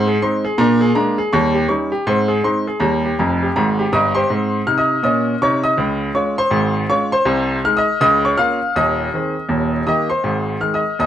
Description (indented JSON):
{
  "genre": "jazz, stride piano",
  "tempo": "162 BPM",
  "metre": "4/4",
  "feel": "swing 62% on 8ths",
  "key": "Ab major",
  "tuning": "A4 = 444 Hz",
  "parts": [
    { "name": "bright baby grand piano", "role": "solo", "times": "0.0-11.1 s", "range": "Eb1 to F6", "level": "-15 LUFS", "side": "equal", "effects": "none" }
  ],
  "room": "moderate studio reverb, RT60 0.5 s",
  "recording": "none",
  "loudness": "-15 LUFS",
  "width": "side -10 dB against mid",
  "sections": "0.0-4.3 A section; 4.3-11.1 B section",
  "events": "grand piano fill 3.2-4.3",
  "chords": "0.0 Ab; 0.6 Bb7; 1.3 Eb7; 2.1 Ab; 2.8 Eb; 4.3 Ab; 5.8 Dbmaj7; 7.3 Ab/C; 8.0 Bbm/Db; 8.8 Ab/Eb; 9.5 Eb; 10.2 Ab"
}